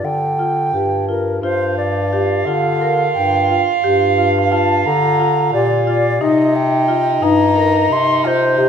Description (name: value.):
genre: contemporary instrumental, chamber music in an uneven meter.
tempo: 176 BPM (eighths).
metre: 7/8.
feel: straight.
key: G minor.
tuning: A4 = 440 Hz.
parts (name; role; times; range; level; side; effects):
reedy baroque flute; melody; 0.0-8.7 s; Bb4 to C6; -18 LUFS; left 1 dB; none.
marimba with medium mallets; arpeggios; 0.0-8.7 s; Eb4 to Bb4; -19 LUFS; left 3 dB; none.
warm bass clarinet; bass; 0.0-8.7 s; G2 to D3; -19 LUFS; left 1 dB; none.
warm cello; second line; 1.4-8.7 s; Eb4 to F4; -19 LUFS; right 7 dB; none.
room: moderate recital hall reverb, RT60 1.5 s.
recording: minimal, uncompressed stereo recording.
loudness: -13 LUFS.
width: side -7 dB against mid.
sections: 0.0-1.4 A section; 1.4-8.7 B section.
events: none.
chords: 0.0 G5; 1.4 Gm7; 6.2 Cm7.